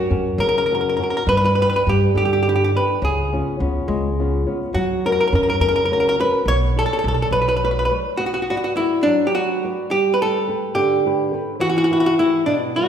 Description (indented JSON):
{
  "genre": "italian folk, Italian serenade",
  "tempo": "70 BPM (dotted quarters)",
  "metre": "6/8",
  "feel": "straight",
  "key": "B minor",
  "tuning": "A4 = 441 Hz",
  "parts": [
    { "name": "archtop guitar, miked and amplified", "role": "melody", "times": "0.0-12.9 s", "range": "D4 to C#5", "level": "-19 LUFS", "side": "right 1 dB", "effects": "none" },
    { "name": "flamenco guitar", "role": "accompaniment", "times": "0.0-12.9 s", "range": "B2 to D5", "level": "-23 LUFS", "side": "left 2 dB", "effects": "none" },
    { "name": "upright bass", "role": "bass", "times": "0.1-7.9 s", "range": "B1 to G2", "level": "-22 LUFS", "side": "equal", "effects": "none" }
  ],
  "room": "wet recital hall reverb, RT60 1.6 s",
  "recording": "recorded in a church or concert hall",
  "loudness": "-17 LUFS",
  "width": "side -8 dB against mid",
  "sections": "0.0-8.2 A section; 8.2-12.9 B section",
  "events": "none",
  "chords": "0.0 F#; 1.3 G; 3.0 C#7; 4.7 F#; 6.5 Bmadd9; 8.2 Bm; 9.9 Gadd9; 11.6 Em"
}